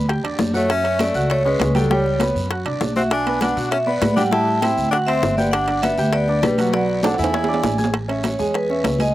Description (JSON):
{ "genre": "Afro-Cuban jazz", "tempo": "199 BPM", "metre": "4/4", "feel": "straight", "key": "A major", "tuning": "A4 = 439 Hz", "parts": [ { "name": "warm baby grand piano", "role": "accompaniment", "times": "0.0-9.1 s", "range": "F#3 to G#6", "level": "-24 LUFS", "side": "right 2 dB", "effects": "slapback echo" }, { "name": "upright bass", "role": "bass", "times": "0.0-9.1 s", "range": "G1 to B2", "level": "-24 LUFS", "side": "equal", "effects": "none" }, { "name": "bongos", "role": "percussion", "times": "0.1-9.1 s", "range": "none", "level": "-27 LUFS", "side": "left 5 dB", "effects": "none" }, { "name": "congas", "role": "percussion", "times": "0.1-9.1 s", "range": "none", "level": "-26 LUFS", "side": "left 1 dB", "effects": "none" }, { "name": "guiro", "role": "percussion", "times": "0.1-9.1 s", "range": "none", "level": "-38 LUFS", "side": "right 3 dB", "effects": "none" }, { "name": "timbales", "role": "percussion", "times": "0.1-9.1 s", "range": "none", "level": "-27 LUFS", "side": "right 5 dB", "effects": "none" }, { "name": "vibraphone with medium mallets", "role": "melody", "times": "0.6-9.1 s", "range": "A4 to A5", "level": "-21 LUFS", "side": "right 1 dB", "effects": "slapback echo" }, { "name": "clear tenor saxophone", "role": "second line", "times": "0.6-7.7 s", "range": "F#3 to E4", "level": "-25 LUFS", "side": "left 4 dB", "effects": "slapback echo" } ], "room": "little or no reverb", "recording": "recorded outdoors, with no room sound", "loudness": "-17 LUFS", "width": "side -15 dB against mid", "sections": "0.0-7.9 A section; 7.9-9.1 B section", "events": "drum fill 7.0-7.9; vibraphone solo 7.9-9.1", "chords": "0.0 G5; 0.7 F#m9; 1.9 Gmaj7#11/C#; 2.5 Bm; 3.1 Bm7; 4.3 Am7; 4.9 D9; 5.5 Gmaj7; 6.7 Bm7; 7.3 E7; 7.9 Amaj9" }